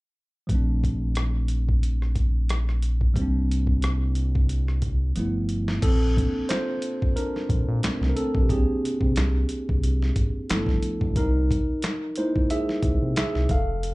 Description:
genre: R&B, neo-soul.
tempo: 90 BPM.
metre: 4/4.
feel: swing 54% on 16ths.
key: Bb major.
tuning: A4 = 440 Hz.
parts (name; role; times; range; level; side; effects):
tine electric piano; accompaniment; 0.5-13.9 s; F3 to F5; -27 LUFS; equal; slapback echo.
round analog bass; bass; 0.5-13.9 s; F1 to C3; -24 LUFS; equal; none.
boom bap sampler-style drum kit; drums; 0.5-13.9 s; crash cymbal, handclaps, hi-hat, kick drum, rim click, snare drum; -26 LUFS; equal; none.
room: little or no reverb.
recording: live gig heard through the venue's PA, club reverb, nothing above 10.5 kHz.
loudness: -22 LUFS.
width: side -22 dB against mid.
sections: 0.5-5.8 A section; 5.8-13.9 B section.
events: drum fill 5.2-5.8; tine electric piano solo 5.8-13.9.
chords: 0.5 Bbmaj9; 3.2 Gmadd11/C; 5.2 G13; 5.8 Bbmaj9; 8.5 Abmaj9#11/C; 10.5 G13; 11.2 C7alt.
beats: | 0.49 1.16 1.83 2.49 | 3.16 3.83 4.49 5.16 | 5.83 6.49 7.16 7.83 | 8.49 9.16 9.83 10.49 | 11.16 11.83 12.49 13.16 | 13.83.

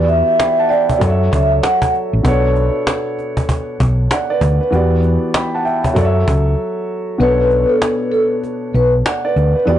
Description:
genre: hip hop, boom-bap hip-hop.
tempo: 97 BPM.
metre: 4/4.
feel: swing 63% on 16ths.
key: B minor.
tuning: A4 = 439 Hz.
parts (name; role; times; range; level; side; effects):
vibraphone with soft mallets; melody; 0.0-1.9, 7.2-9.8 s; A4 to F#5; -16 LUFS; equal; high-pass filter, low-pass filter, digital delay.
dark grand piano; accompaniment; 0.0-9.8 s; B2 to B5; -18 LUFS; equal; cassette tape, high-pass filter, low-pass filter.
hollow-body short-scale fingered electric bass; bass; 0.0-9.8 s; A1 to F#2; -15 LUFS; equal; tube saturation.
cajon; drums; 0.1-9.8 s; none; -19 LUFS; equal; none.
room: moderate studio reverb, RT60 0.6 s.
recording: blown-out, overdriven recording, overdrive, nothing above 10.3 kHz.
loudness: -13 LUFS.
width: side -11 dB against mid.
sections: 0.0-9.8 A section.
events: break 6.6-7.2; kick muted 7.2-9.8.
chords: 0.0 Em7; 1.0 F#m7; 2.2 Bm7; 4.7 Em7; 6.0 F#m7; 7.2 Bm7.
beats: 0.39 1.01 1.63 | 2.25 2.87 3.49 4.10 | 4.72 5.34 5.96 6.58 | 7.20 7.82 8.43 9.05 | 9.67.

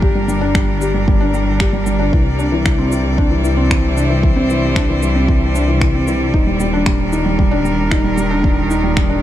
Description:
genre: piano and strings electronica.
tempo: 114 BPM.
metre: 4/4.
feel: straight.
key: unclear.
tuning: A4 = 439 Hz.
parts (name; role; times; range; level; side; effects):
bright string quartet; sustained chords; 0.0-9.2 s; Eb3 to D5; -22 LUFS; equal; sidechain pumping.
felt-muted upright piano; riff; 0.0-9.2 s; E3 to G4; -18 LUFS; equal; digital delay.
dark detuned saw bass; bass; 0.0-9.2 s; Eb1 to C2; -18 LUFS; equal; sidechain pumping.
electronic kick drum; drums; 0.0-9.1 s; none; -16 LUFS; equal; studio reverb.
electronic shaker and finger snaps; drums; 0.3-9.1 s; none; -24 LUFS; equal; studio reverb.
room: small room ambience.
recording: dark, warm production.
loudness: -13 LUFS.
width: side -12 dB against mid.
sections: 0.0-9.2 A section.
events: none.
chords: 0.0 Gm; 2.1 Cadd9; 6.3 Ebmaj7.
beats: | 0.02 0.55 1.08 1.60 | 2.13 2.65 3.18 3.71 | 4.23 4.76 5.29 5.81 | 6.34 6.87 7.39 7.92 | 8.44 8.97.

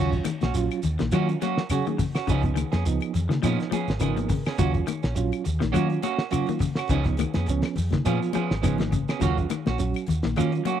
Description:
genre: afrobeat.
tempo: 104 BPM.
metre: 4/4.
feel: swing 55% on 16ths.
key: Eb minor.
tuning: A4 = 440 Hz.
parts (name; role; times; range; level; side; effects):
reed electric piano; accompaniment; 0.0-10.6 s; F3 to Bb4; -28 LUFS; right 8 dB; fast tremolo.
semi-hollow electric guitar; arpeggios; 0.0-10.8 s; Db3 to Gb3; -29 LUFS; left 8 dB; none.
clean electric guitar; stabs; 0.0-10.8 s; F3 to Ab4; -31 LUFS; right 10 dB; spring reverb.
hollow-body short-scale fingered electric bass; bass; 0.0-10.6 s; Ab1 to Eb3; -26 LUFS; equal; none.
cloth-damped thuddy drum kit; drums; 0.1-10.8 s; hi-hat, kick drum, snare drum; -28 LUFS; equal; none.
shekere; percussion; 0.1-10.8 s; none; -34 LUFS; right 1 dB; none.
claves; percussion; 0.3-10.5 s; none; -38 LUFS; left 23 dB; none.
congas; percussion; 0.3-10.8 s; none; -32 LUFS; left 10 dB; none.
room: little or no reverb.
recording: dry, close 1970s-style studio recording.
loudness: -22 LUFS.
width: side -10 dB against mid.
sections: 0.0-10.8 A section.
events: reed electric piano fill 3.7-4.6.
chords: 0.0 Ebm9; 2.3 Db7; 4.6 Ebm7; 6.9 Db7; 9.2 Ebm7.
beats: 0.55 1.13 1.71 | 2.28 2.86 3.44 4.02 | 4.59 5.17 5.75 6.33 | 6.91 7.48 8.06 8.64 | 9.21 9.79 10.37.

